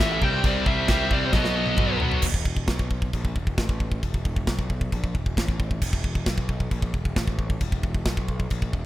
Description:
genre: heavy metal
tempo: 134 BPM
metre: 4/4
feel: straight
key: E minor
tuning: A4 = 439 Hz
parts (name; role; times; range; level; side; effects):
- high-gain lead guitar; melody; 0.0-2.0 s; C5 to G5; -30 LUFS; right 2 dB; distortion, tape echo
- scooped high-gain guitar; riff; 0.0-2.2 s; A2 to C4; -26 LUFS; left 7 dB; distortion
- tight distorted guitar; riff; 0.0-2.2 s; A2 to C4; -31 LUFS; right 14 dB; distortion
- tight distorted guitar; riff; 0.0-2.2 s; A2 to C4; -31 LUFS; right 2 dB; distortion
- fuzz picked electric bass; bass; 0.0-8.9 s; E1 to C2; -29 LUFS; equal; overdrive
- tight metal drum kit; drums; 0.0-8.8 s; china cymbal, crash cymbal, kick drum, snare drum, toms; -25 LUFS; equal; none
room: studio reverb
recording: rough home demo mix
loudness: -22 LUFS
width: side -15 dB against mid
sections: 0.0-2.2 A section; 2.2-8.9 B section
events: drum fill 1.3-2.2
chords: 0.2 C; 1.3 B; 2.2 E5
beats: | 0.44 0.89 1.33 1.78 | 2.23 2.68 3.13 3.58 | 4.02 4.47 4.92 5.37 | 5.82 6.27 6.72 7.17 | 7.61 8.06 8.51

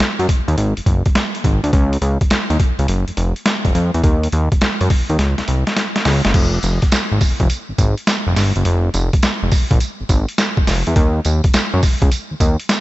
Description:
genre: R&B, new jack swing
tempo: 104 BPM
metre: 4/4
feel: swing 67% on 16ths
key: unclear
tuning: A4 = 440 Hz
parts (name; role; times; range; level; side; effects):
- boom bap sampler-style drum kit; drums; 0.0-12.8 s; crash cymbal, hi-hat, kick drum, snare drum, tambourine; -16 LUFS; equal; overdrive
- fat analog bass; bass; 0.2-12.6 s; F1 to Gb2; -16 LUFS; equal; none
room: light reverb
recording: nothing above 7.9 kHz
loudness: -14 LUFS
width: side -17 dB against mid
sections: 0.0-6.3 A section; 6.3-12.8 B section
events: drum fill 5.2-6.3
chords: none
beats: 0.00 0.57 1.15 | 1.73 2.31 2.88 3.46 | 4.04 4.61 5.19 5.77 | 6.34 6.92 7.50 8.07 | 8.65 9.23 9.80 10.38 | 10.96 11.54 12.11 12.69

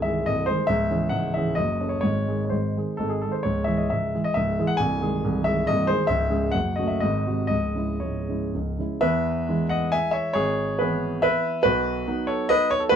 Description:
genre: classical, romantic triple-time dance for piano with dotted rhythms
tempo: 114-152 BPM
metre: 3/4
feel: rubato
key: C# minor, E major from 9.0 s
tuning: A4 = 439 Hz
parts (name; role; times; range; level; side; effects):
- warm grand piano; solo; 0.0-13.0 s; B#0 to G#5; -22 LUFS; equal; none
room: light reverb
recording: dark, warm production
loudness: -22 LUFS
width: side -8 dB against mid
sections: 0.0-9.0 A section; 9.0-13.0 B section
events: none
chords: 0.0 G#/B#; 0.7 C#m; 1.6 F#m; 2.0 G#; 3.5 C#m; 4.8 G#/B#; 6.1 C#m; 6.5 F#m; 7.0 G#7; 7.5 C#m; 9.0 E; 10.4 E/G#; 11.6 B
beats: 0.28 | 0.70 1.12 1.57 | 2.03 2.53 3.00 | 3.46 3.92 4.38 | 4.81 5.25 5.69 | 6.10 6.55 7.02 | 7.51 8.02 8.54 | 9.04 9.49 9.93 | 10.37 10.81 11.24 | 11.65 12.07 12.50 | 12.91

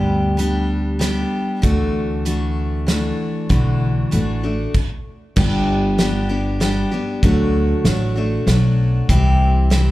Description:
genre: honky-tonk and classic country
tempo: 96 BPM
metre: 3/4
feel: straight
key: G major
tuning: A4 = 440 Hz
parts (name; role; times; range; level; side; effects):
- picked steel-string acoustic guitar; accompaniment; 0.0-9.9 s; G2 to G4; -20 LUFS; left 1 dB; slapback echo
- upright bass; bass; 0.0-9.9 s; G1 to D2; -19 LUFS; equal; none
- natural country drum kit; drums; 0.4-9.9 s; crash cymbal, hi-hat, kick drum, snare drum; -20 LUFS; equal; none
room: studio reverb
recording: live gig heard through the venue's PA, club reverb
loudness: -16 LUFS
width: side -16 dB against mid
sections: 0.0-5.4 A section; 5.4-9.9 B section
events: stop 4.7-5.4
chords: 0.0 G; 1.6 Dadd9; 5.4 G; 7.2 D; 9.1 C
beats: 0.38 1.01 | 1.63 2.25 2.87 | 3.50 4.12 4.74 | 5.36 5.98 6.60 | 7.22 7.85 8.47 | 9.09 9.71

